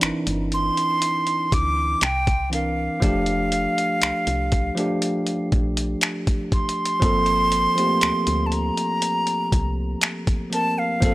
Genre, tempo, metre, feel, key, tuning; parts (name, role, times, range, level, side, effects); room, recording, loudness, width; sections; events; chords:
contemporary R&B; 60 BPM; 4/4; straight; G dorian; A4 = 440 Hz
bell-like tine electric piano; accompaniment; 0.0-11.1 s; E3 to Bb4; -25 LUFS; equal
woody FM bass; bass; 0.0-11.1 s; F1 to D2; -27 LUFS; equal
dusty soul sampler-style drum kit; drums; 0.0-11.1 s; finger snaps, hi-hat, kick drum; -22 LUFS; equal
breathy silver concert flute; melody; 0.5-11.1 s; F5 to D6; -23 LUFS; right 1 dB
little or no reverb; dry, gritty hardware recording; -19 LUFS; side -17 dB against mid
0.0-11.1 A section
0.0 C9; 3.0 F69; 7.0 Gm11